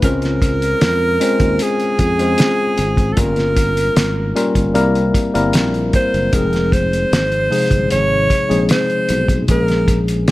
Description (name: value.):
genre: lush 1970s-style soul.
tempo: 76 BPM.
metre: 4/4.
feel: straight.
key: unclear.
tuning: A4 = 439 Hz.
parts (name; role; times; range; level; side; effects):
breathy alto saxophone; melody; 0.0-10.3 s; Ab4 to Db5; -18 LUFS; right 1 dB; none.
tine electric piano; accompaniment; 0.0-10.3 s; C3 to C5; -19 LUFS; left 2 dB; overdrive.
fretless electric bass; bass; 0.0-10.3 s; F1 to F2; -20 LUFS; equal; none.
cloth-damped thuddy drum kit; drums; 0.0-10.3 s; hi-hat, kick drum, snare drum; -18 LUFS; equal; none.
room: small room ambience.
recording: none.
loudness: -13 LUFS.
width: side -17 dB against mid.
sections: 0.0-10.3 A section.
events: none.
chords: 0.0 Dbmaj7; 3.2 Gm7b5; 4.8 C7; 6.3 Fm7; 9.5 Bbm7.